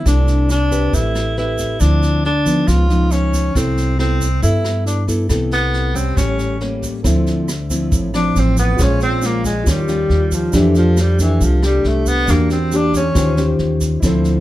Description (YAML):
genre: bossa nova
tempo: 137 BPM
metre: 4/4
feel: straight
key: unclear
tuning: A4 = 440 Hz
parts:
  - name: breathy tenor saxophone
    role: melody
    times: 0.0-13.6 s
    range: E3 to F4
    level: -20 LUFS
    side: equal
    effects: plate reverb
  - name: nylon-string guitar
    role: accompaniment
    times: 0.0-14.4 s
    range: G2 to C5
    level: -19 LUFS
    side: left 1 dB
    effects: none
  - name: upright bass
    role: bass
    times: 0.1-14.4 s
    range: A1 to G2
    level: -18 LUFS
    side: equal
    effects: none
  - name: jazz brush drum kit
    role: drums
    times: 0.1-14.3 s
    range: kick drum, rim click, snare drum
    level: -23 LUFS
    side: equal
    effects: none
  - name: tube shaker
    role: percussion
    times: 0.1-14.4 s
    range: none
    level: -31 LUFS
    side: right 6 dB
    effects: none
  - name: warm grand piano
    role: accompaniment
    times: 7.0-14.4 s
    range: Db4 to E5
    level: -26 LUFS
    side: equal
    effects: none
room: moderate studio reverb, RT60 0.5 s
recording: none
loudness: -14 LUFS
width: side -15 dB against mid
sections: 0.0-7.0 A section; 7.0-14.4 B section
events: tenor saxophone solo 7.0-14.4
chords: 0.1 C69; 0.9 Am9; 1.8 Dm9; 2.7 Db9; 3.5 C6; 6.2 A7b9; 7.0 Dm9; 8.8 Bbm7; 9.7 Eb9; 10.5 F69; 12.3 Em7b5; 13.2 Eb13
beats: | 0.05 0.49 0.93 1.36 | 1.80 2.24 2.67 3.11 | 3.55 3.99 4.42 4.86 | 5.30 5.74 6.17 6.61 | 7.05 7.48 7.92 8.36 | 8.79 9.23 9.66 10.10 | 10.54 10.97 11.41 11.85 | 12.28 12.72 13.15 13.59 | 14.03